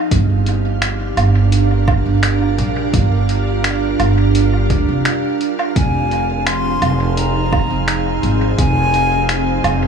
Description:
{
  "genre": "ambient dub",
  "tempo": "85 BPM",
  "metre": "4/4",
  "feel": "straight",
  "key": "unclear",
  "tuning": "A4 = 440 Hz",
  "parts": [
    { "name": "soft additive organ-like pad", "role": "sustained chords", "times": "0.0-9.9 s", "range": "F3 to F5", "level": "-19 LUFS", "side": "right 2 dB", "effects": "ensemble chorus, built-in reverb" },
    { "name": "upright bass", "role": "bass", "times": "0.1-9.9 s", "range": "F1 to D2", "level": "-16 LUFS", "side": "right 2 dB", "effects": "none" },
    { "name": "electronic kick drum", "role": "drums", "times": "0.1-8.7 s", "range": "none", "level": "-17 LUFS", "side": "equal", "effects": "none" },
    { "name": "lo-fi sampler-style drum kit", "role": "drums", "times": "0.1-9.8 s", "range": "finger snaps, hi-hat, woodblock", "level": "-22 LUFS", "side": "right 2 dB", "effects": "dub echo" },
    { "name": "breathy silver concert flute", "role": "melody", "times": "5.8-9.6 s", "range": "Ab5 to C6", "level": "-20 LUFS", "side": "left 3 dB", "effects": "dub echo" }
  ],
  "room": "light reverb, digital ambience",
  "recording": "small room reverb",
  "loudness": "-13 LUFS",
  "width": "side -6 dB against mid",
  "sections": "0.0-9.9 A section",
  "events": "none",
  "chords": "0.1 Gm7; 5.8 Fm7"
}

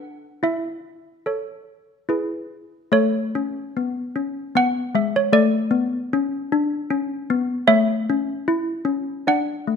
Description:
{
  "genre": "classical, tune for handbells",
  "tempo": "71-78 BPM",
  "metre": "3/4",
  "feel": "straight",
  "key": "A major",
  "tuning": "A4 = 441 Hz",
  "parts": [
    { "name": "malleted handbells", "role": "solo", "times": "0.0-9.8 s", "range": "G#3 to F#5", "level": "-19 LUFS", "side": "left 1 dB", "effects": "none" }
  ],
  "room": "wet recital hall reverb, RT60 1.4 s",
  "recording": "close, detailed microphones",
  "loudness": "-20 LUFS",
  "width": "side -6 dB against mid",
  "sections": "0.0-2.9 A section; 2.9-9.8 B section",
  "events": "none",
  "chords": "0.4 A/E; 2.1 E; 2.9 A; 5.3 D5/A; 7.7 A"
}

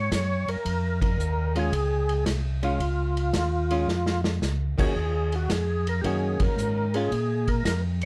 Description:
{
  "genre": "soul jazz organ trio",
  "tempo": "112 BPM",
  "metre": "4/4",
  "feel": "swing 67% on 8ths",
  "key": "Bb minor",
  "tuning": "A4 = 442 Hz",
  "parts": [
    { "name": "percussive tonewheel organ", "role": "melody", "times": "0.0-7.8 s", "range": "F4 to Db5", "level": "-32 LUFS", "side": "equal", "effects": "overdrive, chorus vibrato, slow rotary speaker, plate reverb" },
    { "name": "mellow tonewheel organ", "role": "bass", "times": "0.0-8.1 s", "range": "C2 to Bb2", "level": "-29 LUFS", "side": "equal", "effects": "chorus vibrato, slow rotary speaker" },
    { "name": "vintage drum kit", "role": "drums", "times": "0.1-8.1 s", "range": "crash cymbal, hi-hat, kick drum, ride cymbal, snare drum", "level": "-33 LUFS", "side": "equal", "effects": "none" },
    { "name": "archtop guitar, miked and amplified", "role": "accompaniment", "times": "1.6-7.1 s", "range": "Eb3 to Gb4", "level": "-32 LUFS", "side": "equal", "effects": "none" }
  ],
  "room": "light reverb",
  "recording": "dark, warm production",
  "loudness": "-26 LUFS",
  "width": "mono",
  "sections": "0.0-8.1 A section",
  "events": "band accent 0.9, 6.3; drum fill 3.9-4.4",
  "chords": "0.0 Bbm7; 5.0 Ebm7; 7.1 Bb7(no3)"
}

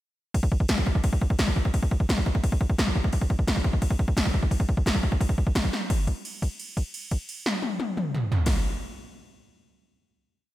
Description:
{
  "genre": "metal",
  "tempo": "173 BPM",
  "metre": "4/4",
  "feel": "straight",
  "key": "none",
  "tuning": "none",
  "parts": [
    { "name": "80s electronic pad drums", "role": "drums", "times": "0.3-8.5 s", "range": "crash cymbal, kick drum, snare drum, toms", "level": "-23 LUFS", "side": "equal", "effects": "gated reverb on snare and toms" }
  ],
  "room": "light reverb",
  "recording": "none",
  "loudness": "-23 LUFS",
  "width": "side -15 dB against mid",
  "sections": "0.4-5.9 riff; 5.9-8.7 final hit",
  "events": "drum fill 5.7; held note 5.9-8.5",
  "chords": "none"
}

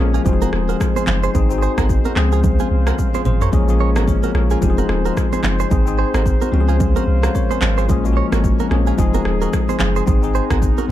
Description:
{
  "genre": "afrobeats",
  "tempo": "110 BPM",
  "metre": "4/4",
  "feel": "swing 58% on 16ths",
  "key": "Bb minor",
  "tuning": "A4 = 438 Hz",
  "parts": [
    { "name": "bell-like tine electric piano", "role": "accompaniment", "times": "0.0-10.9 s", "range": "F3 to F5", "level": "-21 LUFS", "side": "left 6 dB", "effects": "none" },
    { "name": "warm brass ensemble", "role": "sustained chords", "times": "0.0-10.9 s", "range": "Db3 to C5", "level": "-28 LUFS", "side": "left 1 dB", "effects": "none" },
    { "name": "punchy sub bass", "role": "bass", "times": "0.0-10.9 s", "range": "Eb1 to Db2", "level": "-18 LUFS", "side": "equal", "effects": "none" },
    { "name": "direct-recorded clean electric guitar", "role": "riff", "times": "0.1-10.9 s", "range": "F4 to Db5", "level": "-26 LUFS", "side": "right 10 dB", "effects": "spring reverb, ping-pong delay" },
    { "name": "afro-pop drum kit", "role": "drums", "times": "0.1-10.9 s", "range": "handclaps, kick drum, rim click, shaker, toms", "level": "-20 LUFS", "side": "equal", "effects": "none" },
    { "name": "congas", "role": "percussion", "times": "0.3-10.9 s", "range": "none", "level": "-27 LUFS", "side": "right 6 dB", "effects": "none" }
  ],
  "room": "little or no reverb",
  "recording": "dark, warm production",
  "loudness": "-14 LUFS",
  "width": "side -13 dB against mid",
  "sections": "0.0-10.9 A section",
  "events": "drum fill 3.0-3.5",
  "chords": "0.3 Fm7; 1.3 Ab; 2.2 Dbmaj7; 3.5 Bbm7; 4.6 Fm7; 5.7 Ab; 6.5 Dbmaj7; 7.9 Bbm7; 9.0 Fm7; 10.1 Ab"
}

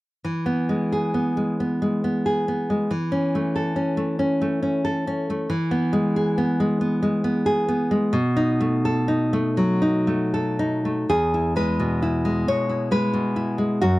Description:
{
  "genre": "romantic piece for solo classical guitar",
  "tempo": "38-47 BPM (dotted quarters)",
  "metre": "6/8",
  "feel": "rubato",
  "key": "E major",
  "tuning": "A4 = 440 Hz",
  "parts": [
    { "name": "nylon-string guitar", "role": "solo", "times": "0.2-14.0 s", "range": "E2 to C#5", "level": "-20 LUFS", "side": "equal", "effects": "none" }
  ],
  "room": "light reverb",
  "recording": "dry, close 1970s-style studio recording",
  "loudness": "-20 LUFS",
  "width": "side -18 dB against mid",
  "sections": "0.2-11.1 A section; 11.1-14.0 B section",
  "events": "none",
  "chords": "0.2 E; 2.9 A/E; 5.5 E; 8.1 B7; 11.1 E"
}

